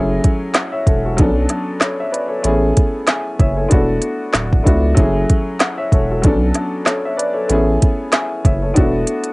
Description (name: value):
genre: hip hop, boom-bap hip-hop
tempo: 95 BPM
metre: 4/4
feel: swing 56% on 16ths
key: F# minor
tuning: A4 = 440 Hz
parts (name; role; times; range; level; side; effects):
- warm upright piano; accompaniment; 0.0-9.3 s; F#3 to G#5; -18 LUFS; left 1 dB; cassette tape, high-pass filter, low-pass filter
- saturated sub bass; bass; 0.0-9.0 s; D1 to C#2; -19 LUFS; equal; none
- organic electronic drum kit; drums; 0.2-9.3 s; handclaps, hi-hat, kick drum, snare drum; -15 LUFS; equal; overdrive
room: light reverb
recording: home recording on cassette, nothing above 10.9 kHz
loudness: -14 LUFS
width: side -24 dB against mid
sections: 0.0-9.3 A section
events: none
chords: 0.0 F#m7; 1.2 Bm9; 2.4 Amaj9; 3.7 E7sus4; 5.0 F#m7; 6.2 Bm9; 7.5 Amaj9; 8.8 E7sus4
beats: 0.55 1.18 1.81 | 2.44 3.07 3.71 4.34 | 4.97 5.60 6.23 6.86 | 7.50 8.13 8.76